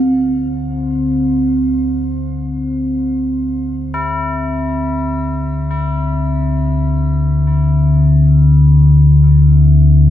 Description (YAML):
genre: dark ambient drone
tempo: free time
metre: none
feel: none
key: unclear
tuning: A4 = 438 Hz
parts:
  - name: deep rumbling drone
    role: drone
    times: 0.0-10.1 s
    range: D2 to D3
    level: -12 LUFS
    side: left 1 dB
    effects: built-in reverb
  - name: bronze singing bowl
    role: texture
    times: 0.0-10.1 s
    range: C4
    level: -19 LUFS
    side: right 2 dB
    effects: shimmer reverb
  - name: tubular bells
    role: arpeggios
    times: 3.9-10.1 s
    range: E4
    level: -25 LUFS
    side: left 4 dB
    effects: analog delay, shimmer reverb
room: wet echo chamber reverb, RT60 2.0 s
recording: echo-heavy mix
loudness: -12 LUFS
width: side -12 dB against mid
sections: 0.0-10.1 A section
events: fade-in on tubular bells 0.0-10.1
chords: 0.0 Dsus2